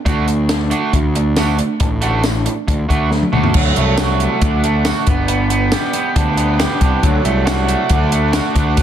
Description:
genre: indie rock.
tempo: 138 BPM.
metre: 4/4.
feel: straight.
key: D mixolydian.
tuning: A4 = 442 Hz.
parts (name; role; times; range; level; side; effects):
fuzz guitar; riff; 0.0-8.8 s; F#3 to G4; -18 LUFS; right 5 dB; distortion, lush chorus.
fuzz picked electric bass; bass; 0.1-8.8 s; G1 to D2; -18 LUFS; left 1 dB; overdrive.
compact cocktail drum kit; drums; 0.1-8.8 s; crash cymbal, hi-hat, kick drum, snare drum, tambourine, toms; -18 LUFS; left 1 dB; none.
twangy electric guitar; riff; 0.3-8.8 s; D3 to D4; -33 LUFS; left 16 dB; none.
ensemble organ-string; sustained chords; 3.6-8.8 s; A4 to D6; -28 LUFS; left 4 dB; ensemble chorus.
room: studio reverb.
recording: dense, heavily limited modern master.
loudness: -13 LUFS.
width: side -10 dB against mid.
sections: 0.0-3.6 A section; 3.6-8.8 B section.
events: drum fill 3.1-3.6.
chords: 0.1 D; 5.1 G; 7.0 D.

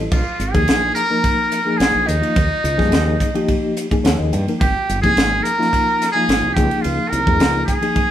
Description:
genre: electric jazz fusion.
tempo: 107 BPM.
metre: 4/4.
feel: straight.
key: unclear.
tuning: A4 = 437 Hz.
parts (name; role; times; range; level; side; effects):
reed electric piano; accompaniment; 0.0-8.1 s; F3 to G5; -21 LUFS; left 2 dB; fast tremolo.
woody fretless electric bass; bass; 0.0-7.6 s; G1 to G2; -22 LUFS; equal; none.
trumpet with metal mute; melody; 0.1-8.1 s; Eb4 to Bb4; -20 LUFS; equal; none.
concert flute; second line; 0.1-8.1 s; Eb5 to Bb5; -24 LUFS; right 1 dB; none.
tight funk drum kit; drums; 0.1-8.1 s; crash cymbal, hi-hat, kick drum, ride cymbal, snare drum; -20 LUFS; equal; none.
room: moderate studio reverb, RT60 0.8 s.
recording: band playing live in one room.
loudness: -15 LUFS.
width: side -11 dB against mid.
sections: 0.1-8.1 A section.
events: reed electric piano fill 3.8-4.6.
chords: 0.1 Bb5; 2.4 Ebsus4; 4.6 Abmaj7sus2; 6.6 Dbadd9.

